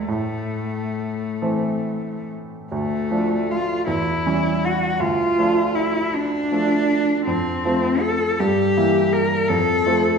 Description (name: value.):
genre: classical, romantic duo for cello and grand piano.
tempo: 44-55 BPM (dotted quarters).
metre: 6/8.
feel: rubato.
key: D minor.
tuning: A4 = 439 Hz.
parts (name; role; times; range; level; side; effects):
rich cello; melody; 0.0-10.2 s; A3 to Bb4; -21 LUFS; left 2 dB; none.
bright baby grand piano; accompaniment; 0.0-10.2 s; D2 to E4; -22 LUFS; right 2 dB; none.
room: wet recital hall reverb, RT60 1.5 s.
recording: heard from further back in the room.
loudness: -18 LUFS.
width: side -6 dB against mid.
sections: 0.0-2.7 A section; 2.7-10.2 B section.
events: none.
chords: 0.1 Am; 2.7 Dm; 3.9 C#dim/E; 5.0 Dm; 7.3 F; 8.4 Edim/G; 9.5 F.